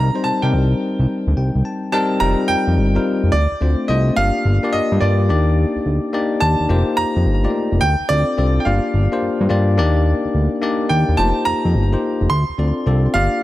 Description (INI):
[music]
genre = R&B, new jack swing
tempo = 107 BPM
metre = 4/4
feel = swing 66% on 16ths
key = unclear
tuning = A4 = 440 Hz
[part]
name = bright grand piano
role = melody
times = 0.0-13.4 s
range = D5 to C6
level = -21 LUFS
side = right 2 dB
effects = ping-pong delay
[part]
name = bell-like tine electric piano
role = accompaniment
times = 0.0-13.4 s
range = G3 to Bb5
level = -20 LUFS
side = left 3 dB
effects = none
[part]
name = fat analog bass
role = bass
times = 0.0-13.3 s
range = F1 to C3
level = -16 LUFS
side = equal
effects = none
[sound]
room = light reverb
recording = none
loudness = -15 LUFS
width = side -15 dB against mid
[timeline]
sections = 0.0-2.2 A section; 2.2-13.4 B section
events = tine electric piano fill 1.1-2.2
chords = 0.0 Cm7; 2.2 F9sus4; 3.3 Dm7; 4.2 Gm7; 5.3 Ebmaj7; 6.7 F9sus4; 7.8 Dm7; 8.7 Gm7; 9.8 Ebmaj7; 11.2 F9sus4; 12.3 Dm7